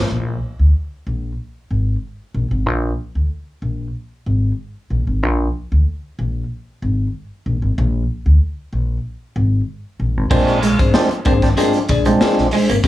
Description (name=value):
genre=funk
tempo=94 BPM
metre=4/4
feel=straight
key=Bb mixolydian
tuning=A4 = 440 Hz
part: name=clean electric guitar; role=riff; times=0.0-0.1, 10.3-12.9 s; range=Ab3 to Bb3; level=-20 LUFS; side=right 2 dB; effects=none
part: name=upright bass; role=bass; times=0.0-12.9 s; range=Ab1 to D2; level=-17 LUFS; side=equal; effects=none
part: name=clean electric guitar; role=accompaniment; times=10.3-12.9 s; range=D4 to D5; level=-20 LUFS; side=left 6 dB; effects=none
part: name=percussive tonewheel organ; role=stabs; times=10.3-12.5 s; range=F3 to D4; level=-18 LUFS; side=right 2 dB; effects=overdrive, slapback echo
part: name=raw garage drum kit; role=drums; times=10.3-12.9 s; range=crash cymbal, hi-hat, kick drum, snare drum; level=-18 LUFS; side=equal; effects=none
room=little or no reverb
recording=small room ambience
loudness=-16 LUFS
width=side -15 dB against mid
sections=0.1-10.3 A section; 10.3-12.9 B section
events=none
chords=0.1 Bb7(no3); 10.3 Bb9